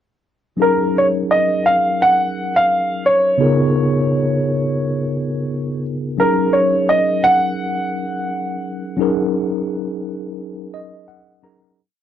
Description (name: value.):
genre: soul.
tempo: 86 BPM.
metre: 4/4.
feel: swing 58% on 16ths.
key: F# major.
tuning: A4 = 440 Hz.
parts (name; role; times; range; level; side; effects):
warm concert grand piano; melody; 0.6-11.0 s; A#4 to F#5; -16 LUFS; right 1 dB; none.
mellow tine electric piano; accompaniment; 0.6-11.8 s; C#3 to A#5; -20 LUFS; left 1 dB; medium stereo tremolo.
room: moderate booth ambience, RT60 0.2 s.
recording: dry, close 1970s-style studio recording.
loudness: -15 LUFS.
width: side -10 dB against mid.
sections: 0.6-11.8 A section.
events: fade-out 9.0-11.8; tine electric piano fill 10.4-11.8.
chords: 0.6 F#69; 3.4 C#13; 6.2 F#69.